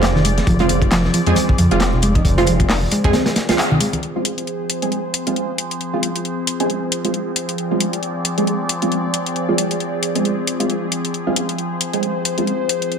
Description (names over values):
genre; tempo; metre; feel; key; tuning
breakbeat, breaks; 135 BPM; 4/4; swing 57% on 16ths; F dorian; A4 = 435 Hz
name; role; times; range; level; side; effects
phased analog pad; sustained chords; 0.0-13.0 s; F3 to D5; -23 LUFS; left 1 dB; phaser, chorus, vintage 12-bit sampler grit, sidechain pumping
detuned saw bass; bass; 0.0-3.1 s; F1 to F2; -19 LUFS; equal; none
crunchy breakbeat drum kit; drums; 0.0-3.9 s; hi-hat, kick drum, snare drum; -19 LUFS; equal; none
house drum kit; drums; 0.0-13.0 s; handclaps, hi-hat; -22 LUFS; left 2 dB; none
hollow-body short-scale picked electric bass; riff; 0.2-3.9 s; Eb3 to Eb4; -21 LUFS; equal; ping-pong delay
congas; percussion; 0.4-4.0 s; none; -28 LUFS; right 2 dB; none
orchestra-hit-like synth stab; stabs; 0.6-12.4 s; Ab3 to Ab4; -21 LUFS; right 2 dB; built-in reverb, ping-pong delay
room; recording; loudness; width
light reverb, studio reverb; none; -16 LUFS; side -7 dB against mid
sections
0.0-4.0 A section; 4.0-13.0 B section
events
band accent 3.6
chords
0.0 Fm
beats
0.03 | 0.47 0.92 1.36 1.81 | 2.25 2.69 3.14 3.58 | 4.03 4.47 4.92 5.36 | 5.81 6.25 6.70 7.14 | 7.58 8.03 8.47 8.92 | 9.36 9.81 10.25 10.70 | 11.14 11.58 12.03 12.47 | 12.92